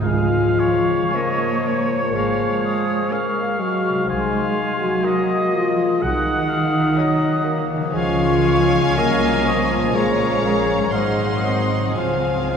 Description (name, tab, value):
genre	classical, slow romantic movement for symphony orchestra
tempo	60 BPM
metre	4/4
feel	uneven beats, rubato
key	Db major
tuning	A4 = 441 Hz
part	bright clarinet	second line	0.0-12.6 s	Db5 to Gb5	-28 LUFS	left 1 dB	none
part	clear oboe	second line	0.0-12.6 s	Db5 to Ab5	-27 LUFS	equal	none
part	mellow bassoon	accompaniment	0.0-12.6 s	F3 to Bb3	-28 LUFS	right 2 dB	none
part	rich studio viola section	accompaniment	0.0-12.6 s	Db4 to F4	-33 LUFS	right 1 dB	none
part	dark French horn section	sustained chords	0.0-12.6 s	Eb4 to C5	-22 LUFS	left 3 dB	none
part	concert harp	arpeggios	0.0-12.6 s	Ab2 to Ab5	-28 LUFS	left 4 dB	none
part	dark chamber double bass section	bass	0.0-12.6 s	Ab1 to Db2	-27 LUFS	right 4 dB	none
part	dark symphonic cello section	bass	0.0-12.6 s	Eb3 to C4	-25 LUFS	right 2 dB	none
part	timpani	percussion	0.0-1.6, 12.0-12.6 s	Db3	-26 LUFS	right 3 dB	none
part	mellow flute section	second line	0.1-12.6 s	Ab5 to Eb6	-28 LUFS	left 1 dB	none
part	rich chamber violin section	melody	1.1-12.6 s	Ab5 to C6	-30 LUFS	left 2 dB	none
part	rich chamber violin section	second line	1.1-12.6 s	F5 to Gb5	-33 LUFS	left 1 dB	none
room	wet cathedral reverb, RT60 4.5 s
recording	none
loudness	-17 LUFS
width	side -7 dB against mid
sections	0.0-12.6 A section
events	none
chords	0.0 Db; 4.1 Ab7/C; 7.9 Db; 9.9 Bbm7; 10.9 Ab7; 12.0 Db